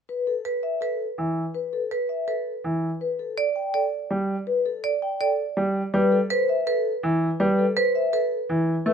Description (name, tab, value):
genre	classical, minimalist pattern music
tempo	164 BPM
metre	4/4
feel	straight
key	A minor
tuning	A4 = 439 Hz
part	vibraphone with medium mallets	melody	0.1-8.9 s	A4 to G5	-26 LUFS	left 5 dB	none
part	marimba with medium hard mallets	arpeggios	0.5-8.4 s	B4 to D5	-26 LUFS	right 5 dB	none
part	bright baby grand piano	accompaniment	1.2-8.9 s	E3 to A3	-23 LUFS	right 1 dB	none
room	little or no reverb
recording	close, detailed microphones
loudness	-22 LUFS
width	side -7 dB against mid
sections	0.0-8.9 A section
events	none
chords	0.0 Asus2; 2.8 Gsus2; 5.8 A7sus2